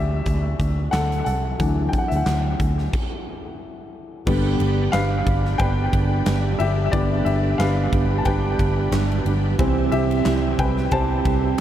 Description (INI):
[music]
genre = piano-driven pop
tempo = 90 BPM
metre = 4/4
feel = swing 56% on 16ths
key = G major from 4.3 s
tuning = A4 = 440 Hz
[part]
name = warm baby grand piano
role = accompaniment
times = 0.0-11.6 s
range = D3 to A5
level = -25 LUFS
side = left 4 dB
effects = dub echo
[part]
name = vintage muted fingered electric bass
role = bass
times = 0.0-11.5 s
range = G1 to D2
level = -22 LUFS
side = equal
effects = none
[part]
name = huge arena drum kit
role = drums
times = 0.3-11.6 s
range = crash cymbal, handclaps, hi-hat, kick drum, ride cymbal, snare drum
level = -26 LUFS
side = equal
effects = dub echo
[part]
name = bright tonewheel organ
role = sustained chords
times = 4.3-11.6 s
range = C3 to B4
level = -33 LUFS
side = equal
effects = overdrive, chorus vibrato, slow rotary speaker
[part]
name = fingerpicked steel-string acoustic guitar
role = riff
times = 4.3-11.6 s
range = G2 to G4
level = -25 LUFS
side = right 7 dB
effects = dub echo
[sound]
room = studio reverb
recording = echo-heavy mix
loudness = -18 LUFS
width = side -11 dB against mid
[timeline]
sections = 0.0-4.3 A section; 4.3-11.6 B section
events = grand piano solo 0.0-4.3, 4.3-11.6; stop 2.9-4.3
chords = 0.0 Dadd9; 4.3 G; 9.6 C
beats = 0.26 0.93 | 1.60 2.27 2.93 3.60 | 4.26 4.93 5.60 6.26 | 6.93 7.59 8.26 8.93 | 9.59 10.26 10.92 11.59